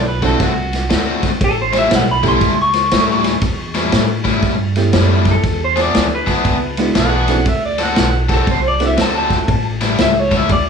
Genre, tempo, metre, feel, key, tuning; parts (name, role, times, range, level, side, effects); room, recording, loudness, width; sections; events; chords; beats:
electric blues shuffle; 119 BPM; 4/4; swing 64% on 8ths; A mixolydian; A4 = 440 Hz
electric guitar through a small old amp; melody; 0.0-10.7 s; A4 to C#6; -18 LUFS; equal; plate reverb
overdriven harmonica; second line; 0.0-0.9, 7.0-8.2 s; F#4 to F#5; -22 LUFS; right 4 dB
upright bass; bass; 0.0-10.7 s; A1 to A2; -19 LUFS; right 1 dB
tack piano; accompaniment; 0.2-9.5 s; G#3 to G4; -21 LUFS; right 3 dB
cranked stack guitar; riff; 0.2-10.5 s; A2 to A4; -19 LUFS; left 4 dB; overdrive
vintage drum kit; drums; 0.2-10.6 s; kick drum, ride cymbal, snare drum; -18 LUFS; equal
light reverb; small room ambience; -13 LUFS; side -6 dB against mid
0.0-10.7 A section
0.0 D7; 1.4 A7; 5.4 E7; 7.5 D7; 9.5 A7
0.41 0.91 | 1.42 1.92 2.42 2.93 | 3.43 3.93 4.44 4.94 | 5.45 5.95 6.46 6.96 | 7.46 7.97 8.47 8.98 | 9.49 9.99 10.50